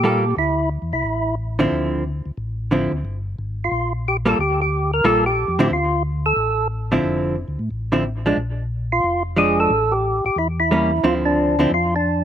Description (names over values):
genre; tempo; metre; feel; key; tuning
soul jazz organ trio; 180 BPM; 4/4; swing 64% on 8ths; D minor; A4 = 437 Hz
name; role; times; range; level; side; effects
percussive tonewheel organ; melody; 0.0-1.4, 3.6-6.7, 8.9-12.2 s; D4 to Bb4; -19 LUFS; equal; slow rotary speaker, overdrive, slapback echo
vintage hollow-body jazz guitar; accompaniment; 0.0-11.7 s; D3 to A4; -19 LUFS; right 1 dB; none
mellow tonewheel organ; bass; 0.0-12.2 s; F1 to Bb2; -24 LUFS; left 1 dB; chorus vibrato, slow rotary speaker
room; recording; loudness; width
little or no reverb; recorded outdoors, with no room sound; -18 LUFS; side -9 dB against mid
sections
0.0-12.2 A section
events
none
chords
0.4 Dm9; 3.0 Gm9; 5.7 Dm9; 8.4 Bb7; 9.7 A7b9; 11.0 Dm9